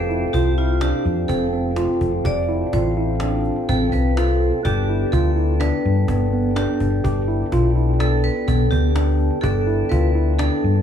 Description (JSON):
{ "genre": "progressive instrumental, band music in an uneven meter", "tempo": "125 BPM", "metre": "5/4", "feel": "straight", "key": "unclear", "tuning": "A4 = 437 Hz", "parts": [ { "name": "vibraphone with hard mallets", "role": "second line", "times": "0.0-10.8 s", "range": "F4 to D5", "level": "-26 LUFS", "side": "right 1 dB", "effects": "none" }, { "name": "percussive tonewheel organ", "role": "accompaniment", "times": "0.0-10.8 s", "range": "B3 to A4", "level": "-26 LUFS", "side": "left 3 dB", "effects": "slow rotary speaker" }, { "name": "mellow tine electric piano", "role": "arpeggios", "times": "0.0-10.7 s", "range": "B3 to G4", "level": "-24 LUFS", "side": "right 3 dB", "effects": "wide subtle chorus, tape echo" }, { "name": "hollow-body short-scale fingered electric bass", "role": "bass", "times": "0.0-10.8 s", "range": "F1 to G2", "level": "-20 LUFS", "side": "left 1 dB", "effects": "none" }, { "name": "cajon", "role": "drums", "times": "0.1-10.7 s", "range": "none", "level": "-29 LUFS", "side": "equal", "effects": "none" } ], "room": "moderate plate reverb, RT60 1.2 s, small room ambience", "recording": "dreamy mix soaked in reverb, small room reverb", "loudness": "-17 LUFS", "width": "side -8 dB against mid", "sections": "0.0-10.8 A section", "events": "none", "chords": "0.0 Fadd9; 4.6 Gadd9" }